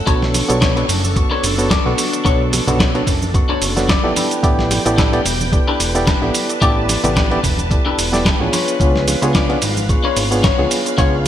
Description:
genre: nu-disco, nu disco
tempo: 110 BPM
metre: 4/4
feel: swing 55% on 16ths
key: B minor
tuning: A4 = 440 Hz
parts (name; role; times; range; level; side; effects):
- string machine, full ensemble; sustained chords; 0.0-11.3 s; D4 to C#6; -25 LUFS; equal; ensemble chorus, sidechain pumping
- fat analog bass; bass; 0.0-11.3 s; E1 to C#2; -21 LUFS; equal; none
- reed electric piano; accompaniment; 0.1-11.3 s; B3 to C#6; -20 LUFS; right 1 dB; fast tremolo, digital delay
- clean electric guitar; riff; 0.1-11.3 s; D4 to D5; -22 LUFS; left 5 dB; lush chorus, digital delay
- dusty soul sampler-style drum kit; drums; 0.1-11.3 s; hi-hat, ride cymbal, shaker, snare drum; -20 LUFS; right 1 dB; gated reverb
- electronic kick drum; drums; 0.1-11.1 s; none; -18 LUFS; equal; none
- congas and bongos; percussion; 0.3-11.3 s; none; -28 LUFS; right 2 dB; none
room: light reverb, digital ambience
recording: bright 1980s-style digital production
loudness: -13 LUFS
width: side -11 dB against mid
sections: 0.0-11.3 A section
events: none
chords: 0.1 Bm9; 4.2 A9sus4; 8.5 C#7b9

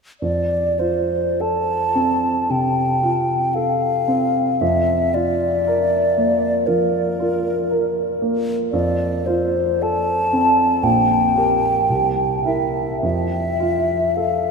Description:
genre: classical, romantic duo for flute and grand piano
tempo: 48-60 BPM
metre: 4/4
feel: rubato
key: F major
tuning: A4 = 439 Hz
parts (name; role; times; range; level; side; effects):
- mellow hollow concert flute; melody; 0.2-14.5 s; Bb4 to A5; -18 LUFS; left 1 dB; none
- warm grand piano; accompaniment; 0.2-14.5 s; Bb1 to Bb4; -21 LUFS; right 2 dB; none
room: wet cathedral reverb, RT60 6.3 s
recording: in a vast, echoing space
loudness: -17 LUFS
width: side -5 dB against mid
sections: 0.2-14.5 A section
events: none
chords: 0.2 F; 4.6 Bb/F; 8.7 F; 10.8 Gm/Bb; 11.9 C7; 13.0 F

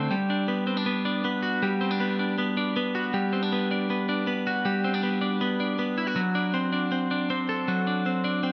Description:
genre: indie pop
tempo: 158 BPM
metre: 4/4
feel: straight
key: unclear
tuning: A4 = 439 Hz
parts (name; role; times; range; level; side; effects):
- twelve-string electric guitar; solo; 0.0-8.5 s; D3 to A4; -27 LUFS; equal; spring reverb
room: light reverb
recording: rough home demo mix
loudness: -27 LUFS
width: mono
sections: 0.1-8.5 A section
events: none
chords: 0.1 Gmaj7; 6.2 D7/F#

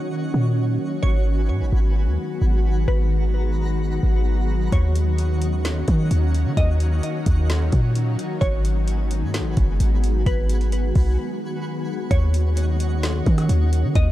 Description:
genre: hip hop, atmospheric cloud-rap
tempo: 130 BPM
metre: 4/4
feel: half-time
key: Eb minor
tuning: A4 = 440 Hz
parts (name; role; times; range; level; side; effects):
- shimmering ambient pad; sustained chords; 0.0-14.1 s; Eb3 to Gb4; -27 LUFS; left 1 dB; chorus, built-in reverb, sidechain pumping
- twinkling granular texture; texture; 0.0-14.1 s; Eb4 to Bb5; -37 LUFS; right 1 dB; built-in reverb
- warm 808-style bass; bass; 0.3-14.1 s; Gb1 to Eb3; -19 LUFS; equal; none
- glassy wavetable pluck; melody; 1.0-14.1 s; Cb5 to Eb5; -33 LUFS; equal; chorus, digital delay
- smooth R&B drum kit; drums; 4.7-14.1 s; hi-hat, kick drum, rim click, snare drum; -22 LUFS; equal; none
room: digital ambience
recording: dark, warm production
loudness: -18 LUFS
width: side -14 dB against mid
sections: 0.0-12.1 A section; 12.1-14.1 B section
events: break 11.2-12.1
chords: 0.0 Ebm7; 1.0 Abm7; 4.7 Ebm7; 8.4 Abm7; 12.1 Ebm7

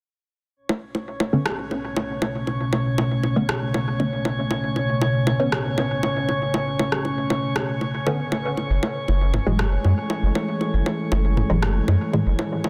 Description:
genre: dub techno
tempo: 118 BPM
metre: 4/4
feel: straight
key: unclear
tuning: A4 = 440 Hz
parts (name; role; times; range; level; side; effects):
- deep dark ambient pad; sustained chords; 1.9-12.7 s; B2 to C#5; -28 LUFS; equal; chorus, built-in reverb
- drifting glass-harmonics texture; texture; 1.0-12.7 s; C#4 to C#5; -32 LUFS; equal; chorus, built-in reverb
- electronic bongos and toms; percussion; 0.7-12.7 s; none; -29 LUFS; equal; dub echo
- filtered dub chord stab; stabs; 1.3-12.2 s; A2 to C#4; -29 LUFS; equal; chorus, phaser, cassette tape, dub echo
- electronic rim click; drums; 1.5-11.7 s; none; -32 LUFS; equal; soft clipping on snare, dub echo
- soft dub sub bass; bass; 8.7-12.3 s; F#1 to F#2; -22 LUFS; equal; none
room: light reverb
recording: dense, heavily limited modern master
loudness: -23 LUFS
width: mono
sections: 0.6-12.7 A section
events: filter sweep on synth stab 0.6-12.7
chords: 0.6 B7sus2; 8.7 F#m9

